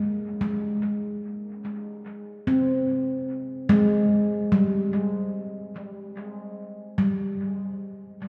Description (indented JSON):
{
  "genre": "ambient",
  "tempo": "73 BPM",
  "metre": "4/4",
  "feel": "straight",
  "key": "Ab major",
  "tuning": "A4 = 440 Hz",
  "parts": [
    { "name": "handpan", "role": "solo", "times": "0.0-8.3 s", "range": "G3 to C4", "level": "-26 LUFS", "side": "equal", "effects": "dub echo" }
  ],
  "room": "wet echo chamber reverb, RT60 2.6 s",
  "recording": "echo-heavy mix",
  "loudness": "-25 LUFS",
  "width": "mono",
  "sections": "0.0-8.3 A section",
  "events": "none",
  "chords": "0.0 Abmaj7; 5.7 N.C.",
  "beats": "0.81 1.63 | 2.46 3.28 4.10 4.92 | 5.74 6.57 7.39 8.21"
}